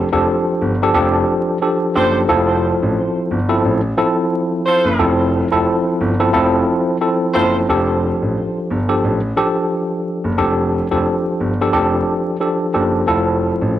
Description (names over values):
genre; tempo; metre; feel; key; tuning
hip hop; 89 BPM; 4/4; swing 56% on 16ths; unclear; A4 = 440 Hz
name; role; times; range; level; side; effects
tine electric piano; accompaniment; 0.0-13.8 s; F3 to A4; -16 LUFS; equal; overdrive, fast stereo tremolo, cassette tape, high-pass filter, low-pass filter
dark concert grand piano; bass; 0.1-13.7 s; F1 to A1; -20 LUFS; equal; none
mellow horn section; stabs; 2.0-7.6 s; F4 to C5; -20 LUFS; right 1 dB; high-pass filter, low-pass filter, analog delay
room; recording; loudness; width
studio reverb; dry, gritty hardware recording, vinyl crackle; -14 LUFS; side -12 dB against mid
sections
0.0-7.7 A section; 7.7-13.8 B section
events
none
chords
0.0 F69; 2.3 Fmaj7; 7.7 F69; 13.1 Fmaj7